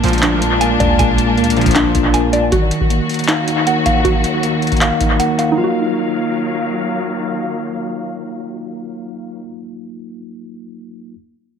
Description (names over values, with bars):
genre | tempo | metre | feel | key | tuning
hip hop, trap | 157 BPM | 4/4 | half-time | Eb harmonic minor | A4 = 440 Hz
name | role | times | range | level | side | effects
mellow tine electric piano | accompaniment | 0.0-11.2 s | Bb2 to F5 | -19 LUFS | equal | medium stereo tremolo, low-pass filter
warm symphonic string section | sustained chords | 0.0-9.4 s | Eb2 to F5 | -21 LUFS | left 3 dB | low-pass filter
mallet-like synth pluck | arpeggios | 0.0-9.5 s | D4 to Ab5 | -19 LUFS | right 2 dB | chorus, low-pass filter, analog delay
big bright polysynth | stabs | 0.0-1.9 s | D2 to F3 | -22 LUFS | equal | chorus, analog delay
clean 808-style bass | bass | 0.0-2.5 s | Bb1 to D2 | -20 LUFS | equal | none
booming analog drum machine | drums | 0.0-5.5 s | handclaps, hi-hat, kick drum | -18 LUFS | equal | analog delay
room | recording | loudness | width
moderate echo chamber reverb, RT60 1.7 s | echo-heavy mix | -13 LUFS | side -7 dB against mid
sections
0.0-2.5 A section; 2.5-5.6 B section; 5.6-8.6 C section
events
filter sweep 2.5-5.6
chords
0.0 Bb7; 2.5 Ebmadd9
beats
0.23 0.61 | 0.99 1.37 1.76 2.14 | 2.52 2.90 3.29 3.67 | 4.05 4.43 4.81 5.20 | 5.58 5.96 6.34 6.72 | 7.11 7.49 7.87 8.25